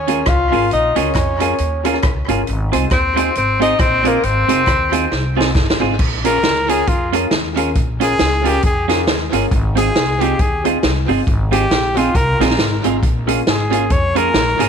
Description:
ska; 136 BPM; 4/4; swing 58% on 8ths; A4 = 440 Hz
clear tenor saxophone; melody; 0.0-5.1 s; Bb3 to F4; -17 LUFS; left 2 dB; tape echo
upright bass; bass; 0.0-14.7 s; F1 to F2; -21 LUFS; equal
clean electric guitar; accompaniment; 0.1-14.7 s; C4 to Ab4; -21 LUFS; right 14 dB
warm upright piano; stabs; 0.1-14.7 s; Bb3 to C5; -24 LUFS; left 14 dB
swinging big-band drum kit; drums; 0.1-14.7 s; crash cymbal, hi-hat, kick drum, rim click, snare drum; -18 LUFS; equal; tape echo
group handclap; percussion; 0.3-5.7 s; -39 LUFS; left 9 dB
clear trumpet; melody; 6.3-14.7 s; F4 to Db5; -19 LUFS; left 1 dB; tape echo
light reverb, small room ambience; 1960s-style stereo with parts hard left and right; -13 LUFS; side -7 dB against mid
0.0-6.0 A section; 6.0-14.7 B section
drum fill 5.1-6.0; trumpet solo 6.0-14.7
0.0 Bbm7; 2.5 Ab6; 6.0 Bbm7; 9.5 Ab6; 13.0 Bbm7
0.27 | 0.71 1.15 1.59 2.03 | 2.47 2.91 3.35 3.79 | 4.23 4.67 5.11 5.55 | 5.99 6.43 6.87 7.31 | 7.75 8.19 8.63 9.07 | 9.51 9.95 10.39 10.83 | 11.27 11.71 12.15 12.59 | 13.03 13.46 13.90 14.34

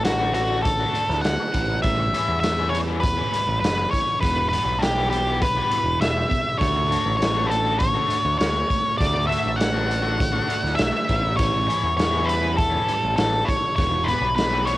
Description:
indie rock; 100 BPM; 4/4; straight; D major; A4 = 441 Hz
octave-fuzz lead guitar; melody; 0.0-14.8 s; F#4 to F#5; -22 LUFS; left 1 dB; distortion, cassette tape, tape echo
overdriven electric guitar; riff; 0.0-14.8 s; E2 to D4; -31 LUFS; right 7 dB; lush chorus, cassette tape
growling picked electric bass; bass; 0.0-14.8 s; E1 to E2; -26 LUFS; equal; overdrive
raw garage drum kit; drums; 0.0-14.8 s; hi-hat, kick drum, snare drum; -25 LUFS; equal; cassette tape
overdriven electric guitar; riff; 0.1-14.7 s; D3 to F#4; -31 LUFS; left 7 dB; cassette tape
small room ambience; home recording on cassette; -19 LUFS; side -16 dB against mid
0.0-14.8 A section
0.0 D; 1.5 A7; 4.2 Em; 6.6 Dmaj7; 11.1 A7; 13.8 Em
0.06 0.65 1.24 | 1.84 2.43 3.02 3.62 | 4.22 4.81 5.41 6.01 | 6.60 7.20 7.80 8.39 | 8.99 9.59 10.19 10.79 | 11.38 11.98 12.58 13.18 | 13.78 14.38

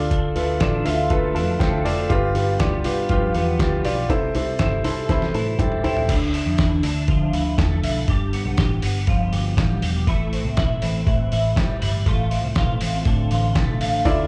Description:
jangly indie pop; 120 BPM; 4/4; straight; D dorian; A4 = 440 Hz
warm upright piano; accompaniment; 0.0-6.1, 14.1-14.2 s; E4 to C6; -25 LUFS; equal
twelve-string electric guitar; arpeggios; 0.0-14.3 s; G2 to A4; -28 LUFS; equal; ensemble chorus, slapback echo
vintage muted picked electric bass; bass; 0.0-14.3 s; E1 to D3; -26 LUFS; equal
lo-fi sampler-style drum kit; drums; 0.1-14.2 s; crash cymbal, hi-hat, kick drum, snare drum, toms; -26 LUFS; equal
light reverb; live gig heard through the venue's PA, club reverb; -21 LUFS; mono
0.0-6.1 A section; 6.1-14.3 B section
upright piano fill 1.1-2.1, 4.6-6.1; drum fill 5.1-6.1
0.0 Dm; 2.1 G7; 4.1 C6; 6.1 Dmadd9; 8.1 G7; 10.1 Am7; 12.1 F6/A
| 0.11 0.61 1.11 1.60 | 2.10 2.60 3.10 3.60 | 4.09 4.59 5.09 5.59 | 6.09 6.59 7.08 7.58 | 8.08 8.58 9.07 9.57 | 10.07 10.57 11.07 11.56 | 12.06 12.56 13.06 13.55 | 14.05

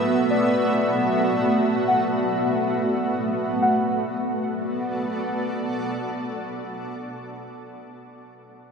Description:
ambient; free time; B minor; A4 = 440 Hz
granular cloud pad; sustained chords; 0.0-7.1 s; A3 to E5; -23 LUFS; equal; built-in reverb
muted felt-like synth keys; arpeggios; 0.0-8.7 s; D5 to F#5; -28 LUFS; left 1 dB; chorus, phaser, tape echo
analog drone; drone; 0.0-6.6 s; B3 to B4; -32 LUFS; left 1 dB
wet cathedral reverb, RT60 5.2 s; in a vast, echoing space; -21 LUFS; side -6 dB against mid
0.0-3.6 A section; 3.6-6.8 B section
0.0 Bm7
free time

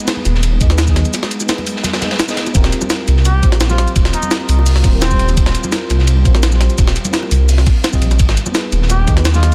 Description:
liquid drum and bass; 170 BPM; 4/4; straight; Eb major; A4 = 440 Hz
mellow FM electric piano; accompaniment; 0.0-9.5 s; Cb4 to Eb5; -27 LUFS; equal; chorus, tape echo
ethereal airy pad; sustained chords; 0.0-9.5 s; G3 to F4; -31 LUFS; equal
crunchy breakbeat drum kit; drums; 0.1-9.5 s; hi-hat, ride cymbal, snare drum; -27 LUFS; equal; high-pass filter on cymbals, small room ambience, high-pass filter on hats, high-pass filter on snare, high-pass filter on room
jungle sampler-style drum kit; drums; 0.1-9.5 s; hi-hat, shaker, snare drum; -22 LUFS; equal; small room ambience
bongos and congas; percussion; 0.1-9.4 s; -29 LUFS; equal
dark detuned saw bass; bass; 0.3-9.5 s; Eb1 to Eb2; -15 LUFS; equal; tube saturation
electronic kick drum; drums; 0.6-9.2 s; -16 LUFS; equal; small room ambience
trumpet with cup mute; melody; 3.3-5.3, 8.9-9.5 s; C4 to G4; -27 LUFS; equal; digital delay
small room ambience; dense, heavily limited modern master; -14 LUFS; mono
0.0-2.5 A section; 2.5-9.5 A section
drop 0.0-2.5, 2.5-9.5; break 1.1-2.5; band accent 2.2
0.0 Abm; 2.5 Eb69; 8.2 Abm
0.08 0.43 0.78 | 1.14 1.49 1.84 2.19 | 2.55 2.90 3.25 3.61 | 3.96 4.31 4.67 5.02 | 5.37 5.72 6.08 6.43 | 6.78 7.14 7.49 7.84 | 8.20 8.55 8.90 9.25

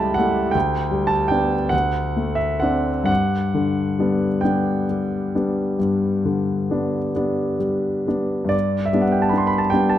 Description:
classical, romantic nocturne for solo piano; 42-55 BPM (dotted quarters); 12/8; rubato; G major; A4 = 439 Hz
warm concert grand piano; solo; 0.0-10.0 s; C#2 to C6; -18 LUFS; equal
moderate recital hall reverb, RT60 1.4 s; close, detailed microphones; -18 LUFS; side -11 dB against mid
0.0-8.5 A section; 8.5-10.0 A section
0.0 A7/C#; 0.5 G/D; 1.7 D7; 3.1 G
0.55 1.73 | 3.09 4.45 5.81 7.17 | 8.53 9.74

